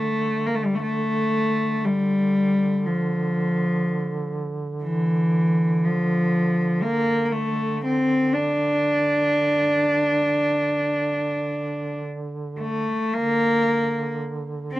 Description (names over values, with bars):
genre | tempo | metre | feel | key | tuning
caucasian folk, Caucasian lament | 51-61 BPM | 4/4 | rubato | D minor | A4 = 440 Hz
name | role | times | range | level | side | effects
rich cello | melody | 0.0-14.8 s | E3 to D4 | -21 LUFS | equal | none
mellow duduk | drone | 0.0-14.8 s | D3 | -30 LUFS | right 3 dB | none
room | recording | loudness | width
small room reverb | dry, close 1970s-style studio recording | -20 LUFS | side -16 dB against mid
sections
0.0-13.1 A section; 13.1-14.8 B section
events
none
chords
none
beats
| 0.82 1.84 2.85 3.85 | 4.85 5.84 6.83 7.83 | 8.83 9.85 10.90 12.02 | 13.14 14.20